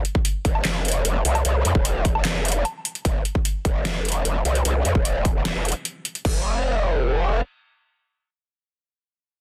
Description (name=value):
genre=heavy wobble dubstep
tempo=150 BPM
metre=4/4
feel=half-time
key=unclear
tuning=A4 = 439 Hz
part: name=growl bass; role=bass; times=0.0-7.4 s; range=Eb1 to F2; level=-24 LUFS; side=equal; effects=distortion, chorus, overdrive
part: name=dubstep drum kit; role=drums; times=0.0-6.3 s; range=crash cymbal, handclaps, hi-hat, snare drum, woodblock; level=-29 LUFS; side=equal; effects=overdrive
part: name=electronic kick drum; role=drums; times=0.1-6.3 s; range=none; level=-25 LUFS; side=equal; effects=overdrive
room=little or no reverb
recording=dense, heavily limited modern master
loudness=-23 LUFS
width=mono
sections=0.0-3.0 A section; 3.0-6.2 B section; 6.2-9.4 C section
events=drop 0.0-3.0; break 2.6-3.0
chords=none